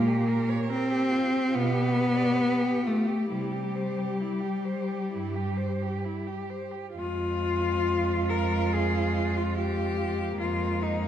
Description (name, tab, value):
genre	classical, lyrical piece for cello ensemble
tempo	65-72 BPM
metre	4/4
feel	rubato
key	F minor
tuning	A4 = 440 Hz
part	rich cello	melody	0.0-11.1 s	Eb4 to Bb4	-32 LUFS	left 6 dB	none
part	rich cello	second line	0.0-11.1 s	Bb3 to D5	-34 LUFS	right 8 dB	none
part	rich cello	accompaniment	0.0-11.1 s	G3 to C4	-28 LUFS	left 1 dB	none
part	rich cello	bass	0.0-11.1 s	F2 to C3	-32 LUFS	right 2 dB	none
room	wet recital hall reverb, RT60 1.7 s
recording	dark, warm production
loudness	-25 LUFS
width	side -10 dB against mid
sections	0.0-7.0 A section; 7.0-11.1 B section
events	none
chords	0.0 Gm/Bb; 1.5 G7/B; 3.3 C; 7.0 Fm